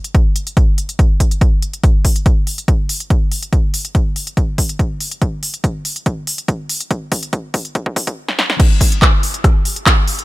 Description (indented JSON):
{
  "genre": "techno",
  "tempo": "142 BPM",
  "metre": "4/4",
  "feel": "straight",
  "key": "none",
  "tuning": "none",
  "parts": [
    { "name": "techno drum kit", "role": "drums", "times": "0.0-10.2 s", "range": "crash cymbal, handclaps, hi-hat, rim click, snare drum", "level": "-18 LUFS", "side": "equal", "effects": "sidechain pumping on hats, sidechain pumping on cymbals" },
    { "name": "electronic kick drum", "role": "drums", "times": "0.1-10.0 s", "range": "none", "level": "-14 LUFS", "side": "equal", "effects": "none" }
  ],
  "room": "little or no reverb",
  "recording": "high-pass filter",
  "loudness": "-14 LUFS",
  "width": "side -19 dB against mid",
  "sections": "0.0-1.8 A section; 1.8-8.6 B section; 8.6-10.2 C section",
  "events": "build-up 1.8-8.6; filter sweep 1.8-8.6; drum fill 5.2-8.2, 8.3-8.6; drop 8.6-10.2",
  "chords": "none"
}